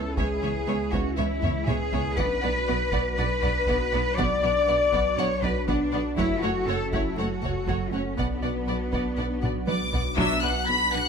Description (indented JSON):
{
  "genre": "cinematic, hybrid orchestral and electronic film score",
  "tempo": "120 BPM",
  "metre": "4/4",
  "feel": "straight",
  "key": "B dorian",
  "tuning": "A4 = 439 Hz",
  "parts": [
    { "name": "dark French horn section", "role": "sustained chords", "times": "0.0-11.1 s", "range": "F#3 to D5", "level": "-30 LUFS", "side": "left 5 dB", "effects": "none" },
    { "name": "warm analog pad", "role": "sustained chords", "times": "0.0-11.1 s", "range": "F#3 to B4", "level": "-34 LUFS", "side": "right 1 dB", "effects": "chorus" },
    { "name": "analog pluck", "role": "arpeggios", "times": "0.0-11.1 s", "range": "C#3 to B4", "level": "-36 LUFS", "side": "right 4 dB", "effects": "chorus, ping-pong delay" },
    { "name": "saturated sub bass", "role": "bass", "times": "0.0-11.1 s", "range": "F#1 to C#2", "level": "-34 LUFS", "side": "equal", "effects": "none" },
    { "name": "warm studio cello section", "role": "bass", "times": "0.0-9.9 s", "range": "B3 to D5", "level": "-29 LUFS", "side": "left 1 dB", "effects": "none" },
    { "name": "rich symphonic violin section", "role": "melody", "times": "0.2-11.1 s", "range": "E5 to B6", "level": "-34 LUFS", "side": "left 2 dB", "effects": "none" },
    { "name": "rich symphonic violin section", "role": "second line", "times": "0.2-11.1 s", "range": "C#5 to B5", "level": "-33 LUFS", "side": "left 1 dB", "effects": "none" },
    { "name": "warm symphonic viola section", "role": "accompaniment", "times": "0.2-11.0 s", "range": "F#3 to B4", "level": "-34 LUFS", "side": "right 1 dB", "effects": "none" },
    { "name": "rich symphonic double bass section", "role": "bass", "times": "0.2-11.0 s", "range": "F#1 to C#2", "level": "-32 LUFS", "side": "right 4 dB", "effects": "none" },
    { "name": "taiko ensemble", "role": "drums", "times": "0.2-10.6 s", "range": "none", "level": "-31 LUFS", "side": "equal", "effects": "none" }
  ],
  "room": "moderate scoring stage reverb, RT60 1.5 s",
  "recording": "none",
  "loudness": "-23 LUFS",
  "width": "side -6 dB against mid",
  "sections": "0.0-10.2 A section",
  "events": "drum fill 1.4-2.2, 9.4-10.2",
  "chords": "0.0 C#m7; 2.2 Bm; 6.2 F#m; 8.2 Bm",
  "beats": "| 0.18 0.68 1.18 1.68 | 2.18 2.68 3.18 3.68 | 4.18 4.68 5.18 5.68 | 6.18 6.68 7.18 7.68 | 8.18 8.68 9.18 9.68 | 10.18 10.68"
}